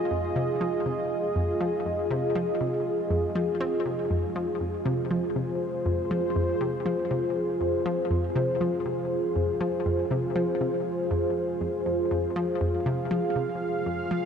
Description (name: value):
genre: ambient, sequencer-driven space music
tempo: 120 BPM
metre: 4/4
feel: straight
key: F minor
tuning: A4 = 440 Hz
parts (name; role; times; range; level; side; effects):
- sweeping resonant pad; sustained chords; 0.0-14.3 s; F4 to F5; -26 LUFS; equal; chorus, shimmer reverb
- analog pluck; riff; 0.1-14.2 s; F2 to C4; -30 LUFS; equal; chorus, ping-pong delay
room: wet huge ambient reverb, RT60 8.1 s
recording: dreamy mix soaked in reverb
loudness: -25 LUFS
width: side -7 dB against mid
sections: 0.0-14.3 A section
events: none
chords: 0.0 Fm